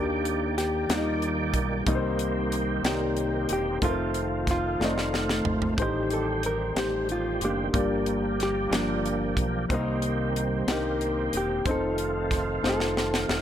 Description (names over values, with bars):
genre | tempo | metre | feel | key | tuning
slow gospel | 61 BPM (dotted quarters) | 6/8 | straight | unclear | A4 = 440 Hz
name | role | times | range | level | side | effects
hollow-body jazz guitar | melody | 0.0-13.4 s | F3 to C5 | -29 LUFS | equal | none
dark concert grand piano | accompaniment | 0.0-13.4 s | G2 to D5 | -31 LUFS | left 4 dB | none
overdriven tonewheel organ | sustained chords | 0.0-13.4 s | Eb3 to D5 | -32 LUFS | right 4 dB | fast rotary speaker, chorus vibrato
fingered electric bass | bass | 0.0-13.4 s | E1 to Eb2 | -33 LUFS | right 1 dB | none
tight funk drum kit | drums | 0.3-13.4 s | hi-hat, kick drum, snare drum, toms | -30 LUFS | equal | none
room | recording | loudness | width
light reverb, small room ambience | none | -24 LUFS | side -10 dB against mid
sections
0.0-13.4 A section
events
drum fill 4.8-5.8, 12.6-13.4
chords
0.0 Ebmaj7; 1.9 Cm7; 3.8 F7; 5.8 Am7b5; 7.7 Gm7; 9.7 Cm7; 11.7 F7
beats
0.90 | 1.88 2.85 | 3.83 4.80 | 5.78 6.76 | 7.74 8.71 | 9.69 10.67 | 11.65 12.63